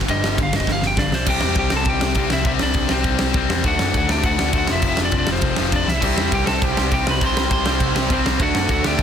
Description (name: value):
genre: punk rock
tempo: 202 BPM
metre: 4/4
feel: straight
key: C major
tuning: A4 = 441 Hz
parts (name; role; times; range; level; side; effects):
- thick fuzz guitar; riff; 0.0-9.0 s; F2 to D4; -28 LUFS; right 1 dB; distortion
- overdriven picked electric bass; bass; 0.0-9.0 s; F1 to F#2; -25 LUFS; equal; none
- big rock drum kit; drums; 0.0-9.0 s; crash cymbal, kick drum, ride cymbal, snare drum, splash cymbal; -21 LUFS; right 1 dB; none
- lightly driven lead guitar; melody; 0.1-9.0 s; C4 to C6; -23 LUFS; equal; digital delay
- cranked stack guitar; riff; 0.1-9.0 s; F2 to D4; -24 LUFS; left 13 dB; overdrive
- raw garage guitar; riff; 0.1-1.1, 6.0-9.0 s; G2 to D4; -26 LUFS; right 13 dB; overdrive
room: little or no reverb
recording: dense, heavily limited modern master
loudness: -16 LUFS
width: side -8 dB against mid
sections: 0.0-1.3 A section; 1.3-9.0 B section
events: lead electric guitar solo 0.0-1.3; drum fill 0.7-1.3, 5.9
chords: 0.0 G5; 1.3 C5; 3.6 D; 4.7 F5; 6.0 C; 8.4 D